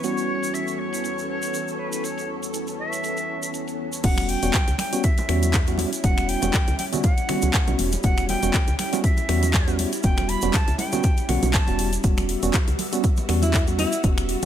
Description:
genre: deep house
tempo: 120 BPM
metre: 4/4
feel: swing 55% on 16ths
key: E dorian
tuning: A4 = 439 Hz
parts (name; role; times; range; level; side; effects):
- jazz flute; melody; 0.0-11.9 s; B4 to B5; -30 LUFS; left 1 dB; vintage 12-bit sampler grit, digital delay
- soft string machine; sustained chords; 0.0-14.5 s; E2 to A4; -32 LUFS; equal; ensemble chorus, sidechain pumping
- tine electric piano; stabs; 0.0-14.5 s; G3 to F#4; -28 LUFS; right 1 dB; medium stereo tremolo, sidechain pumping
- house drum kit; drums; 0.0-14.5 s; crash cymbal, finger snaps, handclaps, hi-hat; -28 LUFS; left 2 dB; overdrive, low-pass filter on hats, studio reverb, low-pass filter on cymbals, low-pass filter on snare
- tube shaker; percussion; 0.0-14.5 s; none; -34 LUFS; right 4 dB; none
- analog string pad; texture; 0.0-4.0, 12.3-14.5 s; C#5 to E6; -38 LUFS; equal; ensemble chorus, phaser, sidechain pumping
- woody FM bass; bass; 4.0-14.5 s; E1 to E2; -25 LUFS; equal; sidechain pumping
- electronic kick drum; drums; 4.0-14.1 s; none; -21 LUFS; equal; overdrive, studio reverb
- congas; percussion; 4.0-14.5 s; none; -33 LUFS; right 4 dB; none
- warm alto saxophone; melody; 13.4-14.0 s; E4; -27 LUFS; left 2 dB; ping-pong delay
room: studio reverb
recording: none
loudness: -20 LUFS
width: side -10 dB against mid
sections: 0.0-4.0 A section; 4.0-14.5 B section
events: drop 4.0-14.5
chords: 0.0 Em69

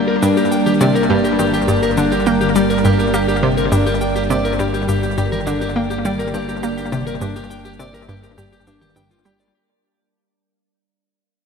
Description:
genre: ambient, sequencer-driven space music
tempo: 103 BPM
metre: 4/4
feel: straight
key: G minor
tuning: A4 = 440 Hz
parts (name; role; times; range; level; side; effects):
- evolving wavetable pad; sustained chords; 0.0-9.5 s; G3 to D5; -19 LUFS; right 1 dB; chorus, built-in reverb
- electric guitar at the edge of break-up; arpeggios; 0.0-9.5 s; D4 to G5; -22 LUFS; left 3 dB; auto-pan, ping-pong delay
- analog pluck; riff; 0.0-9.4 s; G2 to Bb3; -20 LUFS; equal; chorus, ping-pong delay
- fat analog bass; bass; 0.0-9.5 s; G1; -27 LUFS; right 1 dB; none
- electronic cabasa and toms; percussion; 0.2-9.5 s; none; -31 LUFS; equal; overdrive, ping-pong delay
room: wet lush hall reverb, RT60 2.6 s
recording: dreamy mix soaked in reverb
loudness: -15 LUFS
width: side -6 dB against mid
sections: 0.0-9.5 A section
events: fade-in on ambient pad 0.0-9.5; fade-out 3.3-9.5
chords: 0.0 Gm

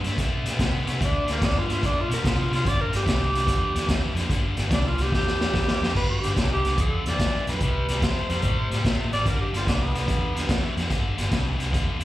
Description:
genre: electric blues shuffle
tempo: 145 BPM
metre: 4/4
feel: swing 66% on 8ths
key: G mixolydian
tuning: A4 = 437 Hz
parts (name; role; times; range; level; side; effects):
- overdriven electric guitar; riff; 0.0-12.0 s; G2 to B3; -30 LUFS; left 4 dB; slapback echo
- vintage muted fingered electric bass; bass; 0.0-12.0 s; G1 to C3; -28 LUFS; equal; none
- raw garage drum kit; drums; 0.0-12.0 s; crash cymbal, hi-hat, kick drum, snare drum; -25 LUFS; equal; none
- breathy tenor saxophone; melody; 1.0-10.6 s; Bb3 to D5; -28 LUFS; right 1 dB; slapback echo
room: light reverb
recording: live gig heard through the venue's PA, club reverb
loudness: -21 LUFS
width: side -15 dB against mid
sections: 0.0-6.0 A section; 6.0-12.0 B section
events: tenor saxophone solo 0.0-6.0; drum fill 5.1-6.0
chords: 0.0 D5; 2.7 G5; 6.0 G7(no3); 7.6 C5; 9.3 G7

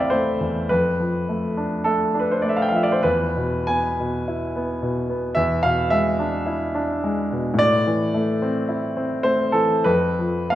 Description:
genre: classical, romantic nocturne for solo piano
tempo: 46-55 BPM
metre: 4/4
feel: rubato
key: A minor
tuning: A4 = 440 Hz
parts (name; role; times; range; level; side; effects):
- warm baby grand piano; solo; 0.0-10.6 s; A1 to C6; -19 LUFS; equal; none
room: wet recital hall reverb, RT60 1.6 s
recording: none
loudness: -19 LUFS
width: side -13 dB against mid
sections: 0.0-10.6 A section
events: none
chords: 0.0 Am; 0.7 Dm/F; 3.0 E; 5.4 E7; 7.6 Am; 9.9 N.C.

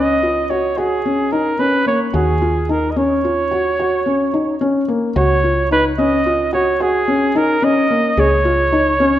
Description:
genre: contemporary instrumental, chamber music in an uneven meter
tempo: 219 BPM (eighths)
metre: 11/8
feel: straight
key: Db mixolydian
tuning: A4 = 440 Hz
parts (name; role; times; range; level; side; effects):
- warm flugelhorn; melody; 0.0-9.2 s; Ab4 to Eb5; -17 LUFS; right 2 dB; none
- felt-muted upright piano; arpeggios; 0.0-9.2 s; Bb3 to Ab4; -17 LUFS; left 2 dB; none
- woody fretless electric bass; bass; 0.0-9.2 s; Db2 to Eb2; -22 LUFS; equal; none
room: moderate concert hall reverb, RT60 2.0 s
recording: none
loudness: -14 LUFS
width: side -12 dB against mid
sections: 0.0-9.2 A section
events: none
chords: 0.0 Dbsus4; 2.1 Ebm7; 5.2 Gbmaj7(no3)/Db; 8.2 Db

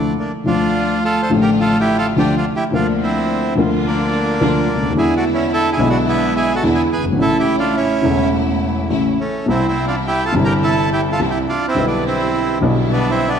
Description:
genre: tango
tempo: 106 BPM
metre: 4/4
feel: rubato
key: D minor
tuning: A4 = 439 Hz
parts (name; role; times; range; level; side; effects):
- bandoneon; melody; 0.0-13.4 s; A3 to C5; -19 LUFS; right 2 dB; none
- dark upright piano; accompaniment; 0.0-13.4 s; E1 to B4; -17 LUFS; left 1 dB; none
- clear studio string section; stabs; 0.5-13.4 s; B2 to B4; -24 LUFS; right 3 dB; none
room: wet recital hall reverb, RT60 1.8 s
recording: dark, warm production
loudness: -14 LUFS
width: side -8 dB against mid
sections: 0.5-13.4 A section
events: none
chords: 0.5 Dm; 2.7 Bb/D; 5.0 E7; 7.2 A; 9.5 C; 11.8 G6/B

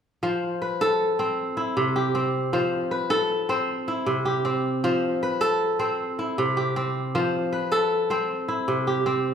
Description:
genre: west african traditional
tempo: 104 BPM (dotted quarters)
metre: 12/8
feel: straight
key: F lydian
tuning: A4 = 439 Hz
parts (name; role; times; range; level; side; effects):
- kora; arpeggios; 0.2-9.3 s; C3 to C5; -22 LUFS; equal; none
room: wet large studio reverb, RT60 1.3 s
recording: band playing live in one room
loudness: -22 LUFS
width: side -7 dB against mid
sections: 0.2-9.3 A section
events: none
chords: 0.2 F; 1.4 C; 2.5 F; 3.7 C; 4.8 F; 6.0 C; 7.1 F; 8.3 C

